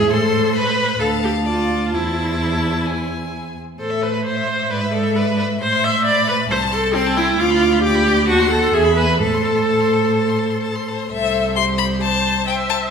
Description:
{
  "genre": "quick classical-period movement for string quartet",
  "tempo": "132 BPM",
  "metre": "4/4",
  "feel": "rubato",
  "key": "A minor",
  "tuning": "A4 = 442 Hz",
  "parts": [
    { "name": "rich violin", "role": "melody", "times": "0.0-12.8 s", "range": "C5 to C6", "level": "-24 LUFS", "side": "left 8 dB", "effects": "none" },
    { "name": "rich violin", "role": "second line", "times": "0.0-12.9 s", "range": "G#4 to D6", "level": "-27 LUFS", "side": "left 2 dB", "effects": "none" },
    { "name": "rich viola", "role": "accompaniment", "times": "0.0-12.9 s", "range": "C4 to E5", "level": "-18 LUFS", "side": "equal", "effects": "none" },
    { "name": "dark cello", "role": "bass", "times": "0.0-12.9 s", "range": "C2 to A2", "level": "-21 LUFS", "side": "right 2 dB", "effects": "none" }
  ],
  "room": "wet recital hall reverb, RT60 1.4 s",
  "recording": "heard from further back in the room",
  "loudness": "-16 LUFS",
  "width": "side -6 dB against mid",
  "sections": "0.0-11.1 A section; 11.1-12.9 B section",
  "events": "none",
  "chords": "0.1 Am; 1.0 Dm; 1.9 Am/E; 3.8 Am; 4.7 E7/G#; 5.6 Am; 6.5 Am/C; 7.4 Bdim/D; 8.3 D#dim7; 8.7 E; 9.2 Am; 11.1 C",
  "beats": "| 0.11 0.56 1.01 1.47 | 1.94 2.41 2.87 3.34 | 3.80 4.26 4.71 5.16 | 5.61 6.06 6.50 6.95 | 7.39 7.84 8.28 8.73 | 9.21 9.69 10.16 10.63 | 11.11 11.56 12.02 12.47"
}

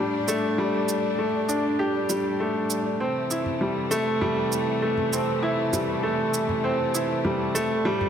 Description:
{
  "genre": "piano and strings electronica",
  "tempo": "99 BPM",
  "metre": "4/4",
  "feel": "straight",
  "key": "unclear",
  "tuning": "A4 = 438 Hz",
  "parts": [
    { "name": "dark chamber string section", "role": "sustained chords", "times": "0.0-8.1 s", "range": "A2 to D4", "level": "-29 LUFS", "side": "left 3 dB", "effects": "none" },
    { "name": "clear baby grand piano", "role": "riff", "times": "0.0-8.1 s", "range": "G3 to G4", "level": "-24 LUFS", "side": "right 1 dB", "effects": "digital delay" },
    { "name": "electronic shaker and toms", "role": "drums", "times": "0.3-8.1 s", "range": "none", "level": "-33 LUFS", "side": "right 3 dB", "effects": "none" }
  ],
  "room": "wet echo chamber reverb, RT60 2.5 s",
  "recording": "none",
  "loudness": "-22 LUFS",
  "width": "side -8 dB against mid",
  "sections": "0.0-8.1 A section",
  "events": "build-up 0.0-8.1",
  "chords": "0.0 Gsus2/A; 3.0 C6",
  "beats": "| 0.58 1.19 1.80 2.40 | 3.01 3.61 4.22 4.83 | 5.43 6.04 6.64 7.25 | 7.86"
}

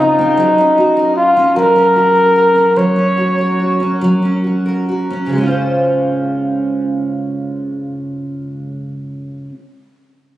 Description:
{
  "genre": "pop",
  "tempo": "44-51 BPM (dotted quarters)",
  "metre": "6/8",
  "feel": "straight",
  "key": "Db major",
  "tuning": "A4 = 440 Hz",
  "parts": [
    { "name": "warm flugelhorn", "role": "melody", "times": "0.0-4.5 s", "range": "Eb4 to Db5", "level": "-12 LUFS", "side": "left 1 dB", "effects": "none" },
    { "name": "picked steel-string acoustic guitar", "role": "accompaniment", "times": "0.0-9.6 s", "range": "Db3 to C5", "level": "-16 LUFS", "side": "right 1 dB", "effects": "double-tracked left and right" }
  ],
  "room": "moderate plate reverb, RT60 3.3 s",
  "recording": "recorded on a phone in the room, club reverb",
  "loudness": "-12 LUFS",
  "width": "side -14 dB against mid",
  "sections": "0.0-5.3 A section; 5.3-8.0 B section",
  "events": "slowing down 0.4-5.3",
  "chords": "0.4 Gb",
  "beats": "| 0.36 1.55 | 2.76 4.01 | 5.34 6.68"
}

